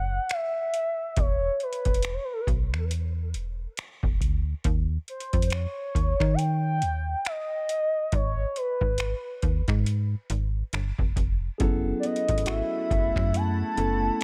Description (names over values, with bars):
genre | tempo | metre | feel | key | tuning
contemporary R&B | 69 BPM | 4/4 | swing 58% on 16ths | unclear | A4 = 441 Hz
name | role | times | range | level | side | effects
gliding portamento lead | melody | 0.0-14.2 s | A4 to A5 | -31 LUFS | equal | chorus, digital delay
slap-like FM bass | bass | 0.0-14.1 s | E1 to D#3 | -30 LUFS | equal | none
booming analog drum machine | drums | 0.3-14.2 s | finger snaps, hi-hat, kick drum | -30 LUFS | equal | none
mellow tine electric piano | accompaniment | 11.6-14.2 s | A3 to A4 | -33 LUFS | equal | none
glassy FM pad | sustained chords | 12.6-14.2 s | A3 to B5 | -39 LUFS | equal | ensemble chorus, built-in reverb, sidechain pumping
fingerpicked steel-string acoustic guitar | arpeggios | 11.6-14.2 s | F#3 to A4 | -38 LUFS | equal | none
soft round pluck | texture | 12.5-14.2 s | F#4 | -42 LUFS | equal | none
room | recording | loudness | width
digital ambience | none | -27 LUFS | mono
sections
0.0-14.2 A section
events
none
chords
0.0 N.C.; 1.2 E5; 4.6 D#7; 8.1 G#m; 10.7 Fsus2; 11.6 F#m11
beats
0.30 | 1.17 2.04 2.90 3.77 | 4.64 5.51 6.38 7.25 | 8.12 8.99 9.86 10.73 | 11.60 12.47 13.34 14.21